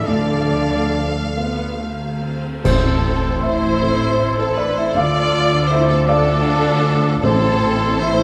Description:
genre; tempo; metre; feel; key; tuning
cinematic, emotional film score for orchestra; 46-54 BPM (dotted quarters); 6/8; rubato; A minor; A4 = 440 Hz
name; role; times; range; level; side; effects
warm symphonic violin section; melody; 0.0-8.2 s; A4 to F5; -27 LUFS; equal; none
mellow clarinet; second line; 0.0-8.2 s; F3 to F4; -34 LUFS; equal; none
silver concert flute; second line; 0.0-8.2 s; D5 to D6; -27 LUFS; equal; none
warm oboe; second line; 0.0-8.2 s; A4 to D5; -32 LUFS; equal; none
warm symphonic violin section; second line; 0.0-8.2 s; A4 to D5; -29 LUFS; equal; none
felt-muted upright piano; accompaniment; 0.0-8.2 s; A1 to F5; -25 LUFS; equal; none
warm symphonic viola section; accompaniment; 0.0-8.2 s; A3 to A4; -28 LUFS; equal; none
mellow French horn section; sustained chords; 0.0-8.2 s; C4 to F4; -29 LUFS; equal; none
concert harp; arpeggios; 0.0-8.2 s; A2 to F5; -29 LUFS; equal; none
warm symphonic cello section; bass; 0.0-8.2 s; A2 to D3; -27 LUFS; equal; none
warm symphonic double bass section; bass; 0.0-8.2 s; A1 to D2; -26 LUFS; equal; none
cymbal swell, clash cymbals and concert bass drum; percussion; 0.1-4.2 s; none; -27 LUFS; equal; none
timpani; percussion; 2.6-8.2 s; A2; -27 LUFS; equal; none
room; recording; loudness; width
wet scoring stage reverb, RT60 1.6 s; none; -18 LUFS; mono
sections
0.0-2.6 A section; 2.6-8.2 B section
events
band accent 2.6-3.4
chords
0.1 Dm; 2.6 Am; 5.0 Dm; 7.2 Am

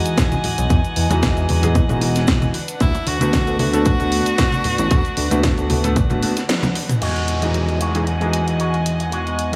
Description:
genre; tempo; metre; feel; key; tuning
nu-disco, nu disco; 114 BPM; 4/4; swing 54% on 16ths; E major; A4 = 441 Hz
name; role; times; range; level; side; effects
warm concert grand piano; accompaniment; 0.0-9.6 s; D3 to A4; -25 LUFS; equal; sidechain pumping
dark studio string section; sustained chords; 0.0-9.6 s; E3 to G#5; -30 LUFS; equal; sidechain pumping
house drum kit; drums; 0.1-9.6 s; crash cymbal, hi-hat, snare drum, toms; -26 LUFS; equal; none
cabasa, bongos and congas; percussion; 0.1-7.0 s; none; -29 LUFS; equal; none
electronic kick drum; drums; 0.2-6.1 s; none; -21 LUFS; equal; none
fat analog bass; bass; 0.6-9.6 s; D1 to E2; -23 LUFS; equal; none
edgy tenor saxophone; melody; 2.8-6.5 s; E4 to F#4; -27 LUFS; equal; dub echo
electric guitar with an envelope filter; riff; 7.0-9.5 s; G#3 to G#4; -28 LUFS; equal; subtle chorus, low-pass filter
downlifter; sound effects; 7.0-9.6 s; none; -32 LUFS; equal; none
room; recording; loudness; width
light reverb, digital ambience; small room ambience; -19 LUFS; mono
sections
0.0-7.0 A section; 7.0-9.6 B section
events
kick drops out 6.5-7.0; drum fill 6.5-7.0; band accent 6.5; filter sweep on clean electric guitar 7.0-9.6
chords
0.0 Emaj9; 2.5 D6; 7.0 Emaj9

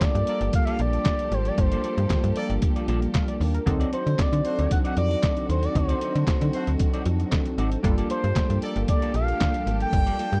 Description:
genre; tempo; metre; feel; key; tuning
early-eighties boogie funk; 115 BPM; 4/4; straight; G minor; A4 = 441 Hz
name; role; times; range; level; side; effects
expressive synth lead; melody; 0.0-10.4 s; C5 to G5; -31 LUFS; equal; chorus
funky polysynth comp; accompaniment; 0.0-10.4 s; F#3 to F5; -32 LUFS; equal; chorus
warm studio string section; sustained chords; 0.0-10.4 s; D3 to A4; -40 LUFS; equal; none
semi-hollow electric guitar; riff; 0.0-10.4 s; Bb3 to D5; -38 LUFS; equal; subtle chorus
slap-like FM bass; bass; 0.0-10.4 s; G1 to D3; -27 LUFS; equal; none
trip hop sampler-style drum kit; drums; 0.0-10.4 s; handclaps, hi-hat, kick drum, snare drum; -26 LUFS; equal; none
mellow horn section; second line; 0.3-8.8 s; A3 to D5; -35 LUFS; equal; none
room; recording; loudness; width
little or no reverb; dry, close 1970s-style studio recording; -24 LUFS; mono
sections
0.0-10.4 A section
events
none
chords
0.0 Gm9; 3.7 D7b9; 7.8 Gm9

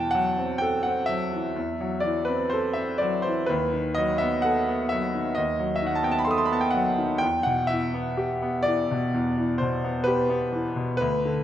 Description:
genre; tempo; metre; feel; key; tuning
classical, romantic nocturne for solo piano; 63 BPM; 4/4; rubato; E minor; A4 = 440 Hz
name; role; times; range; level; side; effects
clear grand piano; solo; 0.0-11.4 s; D2 to D#6; -23 LUFS; equal; none
room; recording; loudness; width
moderate recital hall reverb, RT60 1.4 s; none; -23 LUFS; side -11 dB against mid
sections
0.0-11.4 A section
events
none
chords
0.0 F#m7b5/E; 3.5 B7/D#; 7.2 Em

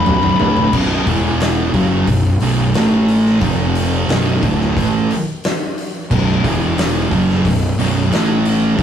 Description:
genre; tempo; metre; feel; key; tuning
stoner and doom metal; 89 BPM; 4/4; straight; B minor; A4 = 440 Hz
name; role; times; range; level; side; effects
fuzz lead guitar; melody; 0.0-0.7 s; B5; -18 LUFS; left 6 dB; distortion
thick fuzz guitar; riff; 0.0-8.8 s; B1 to A3; -21 LUFS; left 6 dB; distortion
thick fuzz guitar; riff; 0.0-8.8 s; B1 to A3; -16 LUFS; right 3 dB; distortion
fuzz fingered electric bass; bass; 0.0-8.8 s; B0 to A1; -21 LUFS; left 1 dB; overdrive, tube saturation
oversized low-tuned drum kit; drums; 0.1-8.8 s; crash cymbal, hi-hat, kick drum, snare drum, toms; -20 LUFS; equal; none
room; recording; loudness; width
light reverb; rough rehearsal-room recording, warm saturation; -13 LUFS; side -9 dB against mid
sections
0.7-8.8 A section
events
drum fill 0.0-0.7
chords
0.1 Bm; 0.7 B5; 1.1 E5; 1.7 B5; 2.7 A5; 3.4 F5; 4.1 Bm; 6.4 E5; 7.1 B5; 8.1 A5

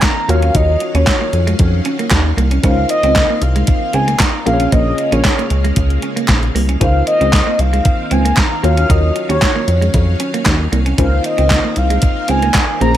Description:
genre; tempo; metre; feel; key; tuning
early-eighties boogie funk; 115 BPM; 4/4; straight; Db major; A4 = 439 Hz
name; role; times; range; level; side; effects
mellow horn-like synth lead; melody; 0.0-13.0 s; Db5 to Bb5; -18 LUFS; equal; chorus, tape echo
tine electric piano; accompaniment; 0.0-13.0 s; Db4 to Db5; -23 LUFS; left 3 dB; overdrive, fast stereo tremolo
string machine, violins; sustained chords; 0.0-13.0 s; Db3 to F5; -25 LUFS; equal; ensemble chorus
clean electric guitar; riff; 0.0-13.0 s; Ab3 to Eb4; -22 LUFS; right 4 dB; lush chorus
crisp 8-bit digital drum machine; drums; 0.0-13.0 s; handclaps, hi-hat, kick drum, snare drum; -16 LUFS; equal; overdrive
group handclap; percussion; 0.0-12.7 s; none; -22 LUFS; right 2 dB; none
chorused synth bass; bass; 0.3-13.0 s; Bb1 to F2; -14 LUFS; equal; none
room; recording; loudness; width
digital ambience; none; -12 LUFS; side -12 dB against mid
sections
0.0-13.0 A section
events
none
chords
0.3 Ebm9; 2.6 Dbmaj13; 4.5 Bbm7; 6.8 Dbmaj13; 8.6 Ebm9; 11.0 Dbmaj13

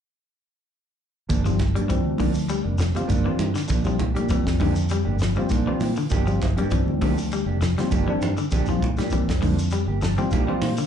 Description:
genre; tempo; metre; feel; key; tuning
afrobeat; 100 BPM; 4/4; swing 54% on 16ths; G dorian; A4 = 441 Hz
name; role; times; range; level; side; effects
mellow electric guitar; stabs; 1.3-10.8 s; F3 to G4; -29 LUFS; right 7 dB; spring reverb, plate reverb, slapback echo
fingered electric bass; bass; 1.3-10.8 s; F1 to Bb2; -25 LUFS; equal; none
tight funk drum kit; drums; 1.3-10.8 s; hi-hat, kick drum, snare drum; -27 LUFS; equal; none
congas; percussion; 1.3-10.8 s; none; -31 LUFS; right 4 dB; slapback echo
shekere; percussion; 1.3-10.9 s; none; -33 LUFS; equal; none
bell-like tine electric piano; accompaniment; 1.4-10.9 s; F3 to A5; -28 LUFS; left 2 dB; analog chorus, plate reverb, slapback echo
electric guitar at the edge of break-up; arpeggios; 1.5-10.9 s; D3 to G3; -28 LUFS; left 6 dB; plate reverb, slapback echo
room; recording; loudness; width
light reverb; live gig heard through the venue's PA, club reverb, nothing above 10.9 kHz; -20 LUFS; side -8 dB against mid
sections
1.3-10.9 A section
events
tine electric piano fill 9.7-10.9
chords
1.3 Gm7; 3.7 Bb6; 6.1 Gm7; 8.5 Bb6

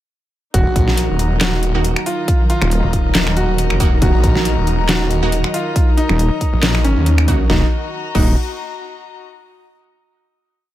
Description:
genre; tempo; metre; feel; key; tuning
heavy wobble dubstep; 138 BPM; 4/4; swing 55% on 16ths, half-time; Eb minor; A4 = 440 Hz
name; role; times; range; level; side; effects
bright baby grand piano; melody; 0.5-8.3 s; Db4 to Gb4; -23 LUFS; equal; ping-pong delay
supersaw pad; sustained chords; 0.5-7.7 s; Eb3 to Bb4; -25 LUFS; equal; phaser, vintage 12-bit sampler grit, sidechain pumping, low-pass filter
wobble bass; bass; 0.5-8.4 s; Eb1; -15 LUFS; equal; chorus, overdrive
dubstep drum kit; drums; 0.5-8.2 s; crash cymbal, finger snaps, handclaps, hi-hat, snare drum; -20 LUFS; equal; overdrive
electronic kick drum; drums; 0.5-8.2 s; none; -16 LUFS; equal; none
warm chamber string section; texture; 0.5-9.2 s; Eb4 to Bb5; -28 LUFS; left 4 dB; sidechain pumping
snarling distorted saw bass; bass; 0.7-7.5 s; Eb1 to Eb2; -17 LUFS; equal; distortion, overdrive
orchestra-hit-like synth stab; stabs; 1.7-8.3 s; Bb3 to Gb4; -26 LUFS; right 2 dB; built-in reverb, ping-pong delay
room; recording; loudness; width
little or no reverb; none; -13 LUFS; side -14 dB against mid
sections
0.5-7.5 drop; 7.5-9.2 final chord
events
drop 0.5-7.5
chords
0.5 Ebm

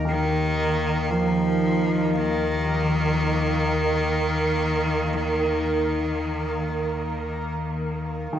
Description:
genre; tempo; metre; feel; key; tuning
dark ambient drone; free time; none; none; unclear; A4 = 440 Hz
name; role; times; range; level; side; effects
analog drone; drone; 0.0-8.4 s; Eb2 to Eb3; -26 LUFS; left 1 dB; chorus
bubbling stepped-filter texture; texture; 0.0-8.4 s; Bb3 to F5; -29 LUFS; right 3 dB; chorus, built-in reverb
bright cello; melody; 0.1-7.3 s; Eb3 to F3; -25 LUFS; equal; analog delay
warm grand piano; arpeggios; 0.1-8.4 s; Eb3; -34 LUFS; right 1 dB; none
room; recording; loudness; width
wet plate reverb, RT60 2.8 s; echo-heavy mix, nothing above 8.0 kHz; -21 LUFS; side -10 dB against mid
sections
0.0-8.3 A section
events
none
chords
0.0 Eb5

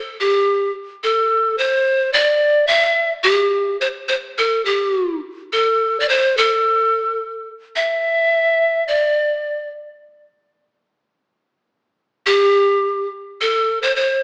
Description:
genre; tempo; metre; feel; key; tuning
andean folk; 107 BPM; 2/4; straight; A minor pentatonic; A4 = 445 Hz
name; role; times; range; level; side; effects
breathy pan flute; solo; 0.2-9.7, 12.3-14.2 s; G4 to E5; -18 LUFS; equal; none
room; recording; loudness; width
moderate recital hall reverb, RT60 1.5 s; small speaker sound; -18 LUFS; mono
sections
0.0-7.8 A section; 7.8-12.3 B section; 12.3-14.2 C section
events
none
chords
none

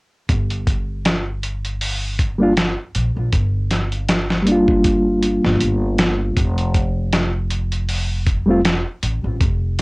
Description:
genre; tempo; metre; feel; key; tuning
trip hop; 79 BPM; 4/4; swing 56% on 16ths; G minor; A4 = 440 Hz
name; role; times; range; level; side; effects
upright bass; bass; 0.3-9.8 s; F1 to Bb1; -21 LUFS; equal; none
dusty soul sampler-style drum kit; drums; 0.3-9.8 s; hi-hat, kick drum, snare drum; -19 LUFS; equal; cassette tape
bright reed electric piano; accompaniment; 2.4-8.6 s; G3 to F4; -17 LUFS; equal; harmonic tremolo, tape echo
room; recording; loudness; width
light reverb; home recording on cassette; -16 LUFS; side -28 dB against mid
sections
0.3-9.8 A section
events
none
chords
0.3 Gm7; 6.4 F

